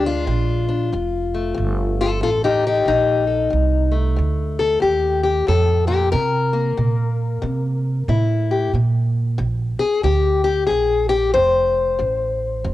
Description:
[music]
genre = acoustic country blues, solo or duo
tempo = 92 BPM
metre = 4/4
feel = swing 63% on 8ths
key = F mixolydian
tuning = A4 = 438 Hz
[part]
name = fingerpicked steel-string acoustic guitar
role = melody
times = 0.0-12.7 s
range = F2 to C5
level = -19 LUFS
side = left 4 dB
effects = cassette tape
[part]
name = upright bass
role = bass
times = 0.0-12.7 s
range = F1 to C3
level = -20 LUFS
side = right 2 dB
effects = transformer saturation
[sound]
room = light reverb, studio reverb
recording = home recording on cassette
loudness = -17 LUFS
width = side -15 dB against mid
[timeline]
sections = 0.0-12.7 A section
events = none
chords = 0.0 Bb7; 0.9 F7; 6.1 C7; 8.7 Bb; 11.3 F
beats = 0.27 | 0.92 1.57 2.22 2.87 | 3.52 4.17 4.82 5.47 | 6.13 6.78 7.43 8.08 | 8.73 9.38 10.04 10.69 | 11.34 11.99 12.64

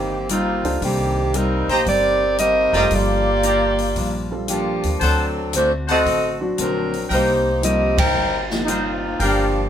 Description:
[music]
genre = jazz, big band swing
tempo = 114 BPM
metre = 4/4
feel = swing 67% on 8ths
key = unclear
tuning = A4 = 438 Hz
[part]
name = mellow saxophone section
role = melody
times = 0.0-9.7 s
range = Eb3 to G5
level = -19 LUFS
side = equal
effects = none
[part]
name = picked steel-string acoustic guitar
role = accompaniment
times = 0.0-9.6 s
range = G2 to F#4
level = -28 LUFS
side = left 1 dB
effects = none
[part]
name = upright bass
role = bass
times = 0.0-9.7 s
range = F1 to Eb2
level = -25 LUFS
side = equal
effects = none
[part]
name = open jazz drum kit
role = drums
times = 0.3-9.4 s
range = hi-hat, kick drum, ride cymbal, snare drum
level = -27 LUFS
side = left 1 dB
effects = none
[part]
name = clear concert grand piano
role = accompaniment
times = 0.6-8.7 s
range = F3 to C5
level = -27 LUFS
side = right 1 dB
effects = none
[part]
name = bright trumpet section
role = stabs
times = 1.7-9.4 s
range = Bb4 to Bb5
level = -22 LUFS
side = equal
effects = none
[sound]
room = moderate studio reverb, RT60 0.5 s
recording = band playing live in one room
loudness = -17 LUFS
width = side -9 dB against mid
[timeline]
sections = 0.0-9.7 A section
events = band accent 7.9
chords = 0.0 Cm7; 2.9 Gm7; 5.0 D7; 7.1 Cm7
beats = 0.29 | 0.81 1.34 1.86 2.39 | 2.91 3.44 3.96 4.49 | 5.01 5.54 6.06 6.58 | 7.11 7.63 8.15 8.68 | 9.20

